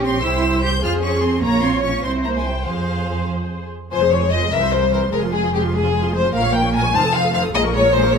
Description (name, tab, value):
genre	quick classical-period movement for string orchestra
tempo	100 BPM (dotted quarters)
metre	6/8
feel	straight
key	F minor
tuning	A4 = 442 Hz
part	rich studio violin section	second line	0.0-8.2 s	E4 to A5	-20 LUFS	left 4 dB	none
part	warm studio viola section	accompaniment	0.0-8.2 s	Eb3 to Db5	-24 LUFS	equal	none
part	clear studio cello section	bass	0.0-8.2 s	C2 to G4	-23 LUFS	right 3 dB	none
part	rich studio double bass section	bass	0.0-8.2 s	F1 to F2	-24 LUFS	right 3 dB	none
part	clear studio violin section	melody	0.1-8.2 s	F5 to G6	-28 LUFS	left 2 dB	none
room	light reverb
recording	close, detailed microphones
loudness	-16 LUFS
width	side -6 dB against mid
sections	0.0-3.9 A section; 3.9-8.2 B section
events	none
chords	0.2 C; 0.8 Fm; 1.4 Bbm; 2.0 C; 2.7 Fm; 4.5 C7; 5.1 Fm; 6.3 Bbm; 6.9 F7; 7.5 Bbm7